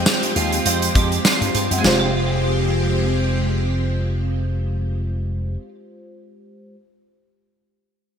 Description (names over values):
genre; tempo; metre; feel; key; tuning
1980s-style pop; 101 BPM; 4/4; swing 55% on 16ths; F minor; A4 = 440 Hz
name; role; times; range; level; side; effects
mellow FM electric piano; accompaniment; 0.0-6.7 s; Ab3 to C5; -27 LUFS; left 1 dB; chorus
string machine, violins; sustained chords; 0.0-5.0 s; F3 to G4; -26 LUFS; equal; ensemble chorus
twelve-string electric guitar; riff; 0.0-5.7 s; Ab3 to G4; -26 LUFS; right 3 dB; ensemble chorus, ping-pong delay
slap bass with an envelope filter; bass; 0.0-5.6 s; F1 to G2; -21 LUFS; equal; none
modern studio drum kit; drums; 0.1-2.0 s; hi-hat, kick drum, snare drum, tambourine; -19 LUFS; right 1 dB; gated reverb
tambourine; percussion; 0.1-2.1 s; none; -32 LUFS; left 8 dB; none
room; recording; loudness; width
light reverb, small room ambience; bright 1980s-style digital production; -17 LUFS; side -7 dB against mid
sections
0.0-1.8 A section; 1.8-4.2 B section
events
none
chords
0.0 Fmadd9